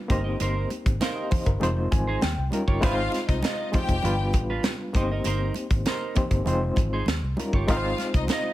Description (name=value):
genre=lush 1970s-style soul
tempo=99 BPM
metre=4/4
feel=straight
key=Ab major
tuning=A4 = 440 Hz
part: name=overdriven reed electric piano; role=accompaniment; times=0.0-8.5 s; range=G3 to Ab5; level=-28 LUFS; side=left 1 dB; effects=fast tremolo
part: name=clean electric guitar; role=riff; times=0.1-8.5 s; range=D4 to Eb5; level=-33 LUFS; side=right 4 dB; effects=lush chorus
part: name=vintage muted fingered electric bass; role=bass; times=0.1-8.3 s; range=F1 to Eb2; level=-28 LUFS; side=equal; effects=none
part: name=tight funk drum kit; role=drums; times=0.1-8.4 s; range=hi-hat, kick drum, snare drum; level=-26 LUFS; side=equal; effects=none
part: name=congas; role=percussion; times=0.1-8.4 s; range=none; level=-35 LUFS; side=right 4 dB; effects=none
part: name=clear studio string section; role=second line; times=2.8-8.5 s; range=Eb4 to G5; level=-32 LUFS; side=left 4 dB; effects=none
room=studio reverb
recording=none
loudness=-22 LUFS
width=side -15 dB against mid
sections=0.0-8.5 A section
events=reed electric piano fill 1.6-2.8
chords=0.1 Cm7/G; 1.6 Fm7; 2.2 Eb9; 2.8 Ab6; 4.0 G7; 4.9 Cm7/G; 6.5 Fm7; 7.1 Eb9; 7.7 Ab6